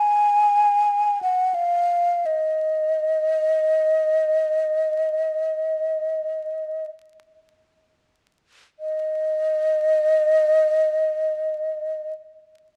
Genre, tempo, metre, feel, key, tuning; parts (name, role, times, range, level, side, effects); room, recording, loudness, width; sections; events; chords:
classical, free, expressive piece for unaccompanied flute; free time; Eb minor; A4 = 439 Hz
mellow hollow concert flute; solo; 0.0-12.1 s; Eb5 to Ab5; -22 LUFS; equal
light reverb; close, detailed microphones, vinyl crackle; -22 LUFS; mono
0.0-8.8 A section; 8.8-12.8 B section
slowing down 0.0-8.8